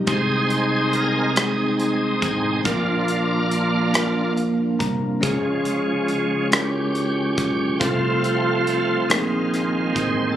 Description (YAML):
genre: slow gospel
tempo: 46 BPM (dotted quarters)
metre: 6/8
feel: straight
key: unclear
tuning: A4 = 440 Hz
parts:
  - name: bell-like tine electric piano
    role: accompaniment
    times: 0.0-10.4 s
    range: Bb2 to Bb5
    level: -23 LUFS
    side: left 1 dB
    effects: fast stereo tremolo
  - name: dark French horn section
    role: sustained chords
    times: 0.0-10.4 s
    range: Eb3 to F4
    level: -30 LUFS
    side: right 2 dB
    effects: none
  - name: fingered electric bass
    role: bass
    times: 0.0-10.4 s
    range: A1 to Db2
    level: -28 LUFS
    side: equal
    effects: none
  - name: bright tonewheel organ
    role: sustained chords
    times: 0.1-10.4 s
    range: Eb3 to C5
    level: -23 LUFS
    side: right 2 dB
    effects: fast rotary speaker, overdrive, chorus vibrato
  - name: modern studio drum kit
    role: drums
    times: 0.1-10.2 s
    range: hi-hat, kick drum, rim click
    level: -23 LUFS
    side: equal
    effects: none
room: light reverb, small room ambience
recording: recorded on a phone in the room, club reverb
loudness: -19 LUFS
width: side -11 dB against mid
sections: 0.0-10.4 A section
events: tonewheel organ solo 0.0-10.4; tine electric piano fill 3.9-5.2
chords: 0.1 Ab/C; 2.6 Bb; 5.2 Db; 7.8 F/C; 9.1 Bb9sus4